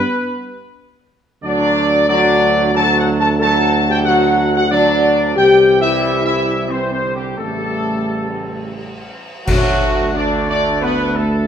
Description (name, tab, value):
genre	classical, ceremonial fanfare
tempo	91 BPM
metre	3/4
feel	straight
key	D mixolydian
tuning	A4 = 440 Hz
part	mellow trumpet section	melody	0.0-11.5 s	F#4 to A5	-17 LUFS	equal	none
part	dark French horn section	sustained chords	0.0-11.5 s	F#3 to A4	-19 LUFS	left 3 dB	none
part	mellow tuba	bass	0.0-11.5 s	A1 to D2	-20 LUFS	right 3 dB	none
part	clear trombone section	sustained chords	1.4-11.4 s	C#3 to A3	-22 LUFS	right 2 dB	none
part	cymbal swell, clash cymbals and concert bass drum	percussion	5.4-10.8 s	none	-23 LUFS	equal	none
room	wet stone room reverb, RT60 1.3 s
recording	none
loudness	-13 LUFS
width	side -8 dB against mid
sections	0.0-9.5 A section; 9.5-11.5 B section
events	band accent 9.5-10.1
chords	0.0 N.C.; 1.4 D; 5.4 C; 7.4 A7; 9.5 D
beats	0.13 0.78 | 1.43 2.09 2.75 | 3.40 4.06 4.71 | 5.37 6.03 6.70 | 7.38 8.08 8.77 | 9.47 10.15 10.82